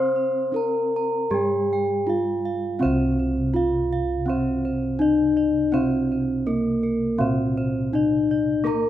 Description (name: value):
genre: Javanese gamelan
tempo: 82 BPM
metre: 4/4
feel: straight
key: C slendro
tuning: A4 = 444 Hz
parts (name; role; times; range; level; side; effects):
- gamelan-type bronze metallophone; melody; 0.0-8.9 s; Bb3-40c to C5; -21 LUFS; left 1 dB; none
- gamelan-type bronze metallophone; accompaniment; 0.0-8.9 s; C3 to C4; -30 LUFS; equal; none
- gamelan-type bronze metallophone; arpeggios; 0.0-8.9 s; Bb4-40c to C6; -32 LUFS; right 2 dB; none
- gamelan-type bossed gongs; bass; 0.0-8.9 s; C2 to C5; -30 LUFS; equal; none
room: moderate plate reverb, RT60 2.4 s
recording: rough home demo mix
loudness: -20 LUFS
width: side -12 dB against mid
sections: 0.0-2.8 A section; 2.8-8.9 B section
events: none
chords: none